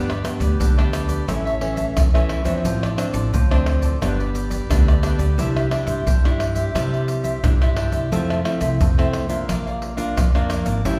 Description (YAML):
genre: samba and choro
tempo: 88 BPM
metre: 4/4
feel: straight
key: unclear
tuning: A4 = 439 Hz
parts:
  - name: cavaquinho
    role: accompaniment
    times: 0.0-11.0 s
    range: D4 to G5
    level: -30 LUFS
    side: equal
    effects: none
  - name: nylon-string guitar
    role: accompaniment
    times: 0.0-11.0 s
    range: G2 to F4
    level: -28 LUFS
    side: equal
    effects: none
  - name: upright bass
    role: bass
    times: 0.0-11.0 s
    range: G1 to C3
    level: -26 LUFS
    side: equal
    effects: none
  - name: tube shaker, pandeiro, tamborim and surdo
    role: percussion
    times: 0.1-11.0 s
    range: none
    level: -24 LUFS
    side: equal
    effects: none
room: wet large studio reverb, RT60 1.4 s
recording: band playing live in one room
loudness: -20 LUFS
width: mono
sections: 0.0-11.0 A section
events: none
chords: 0.0 G; 1.3 A; 2.6 Dm7/A; 4.0 G; 5.4 Cadd9; 8.1 Fmaj7; 9.5 Bb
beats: 0.60 1.28 1.97 | 2.65 3.33 4.02 4.70 | 5.38 6.07 6.75 7.43 | 8.12 8.80 9.49 10.17 | 10.85